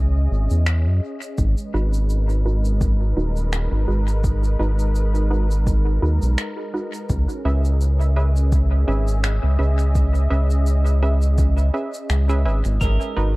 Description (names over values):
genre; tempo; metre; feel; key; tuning
ambient dub; 84 BPM; 4/4; swing 55% on 16ths; G# minor; A4 = 436 Hz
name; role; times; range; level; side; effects
warm analog pad; sustained chords; 0.0-13.4 s; G#3 to A#5; -30 LUFS; equal; chorus
round analog bass; bass; 0.0-13.4 s; D#1 to F#2; -18 LUFS; equal; none
electronic cabasa and finger snaps; drums; 0.5-13.1 s; none; -32 LUFS; left 1 dB; dub echo
electronic kick drum; drums; 1.4-13.0 s; none; -22 LUFS; equal; overdrive
filtered dub chord stab; stabs; 1.7-13.3 s; G#3 to E5; -29 LUFS; right 2 dB; chorus, dub echo
clean lap steel guitar; melody; 12.8-13.4 s; A#4; -28 LUFS; right 4 dB; none
room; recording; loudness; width
little or no reverb; dark, warm production; -18 LUFS; side -21 dB against mid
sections
0.0-13.4 A section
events
none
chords
0.0 C#m; 1.4 G#m7; 7.1 C#m7; 12.8 G#m7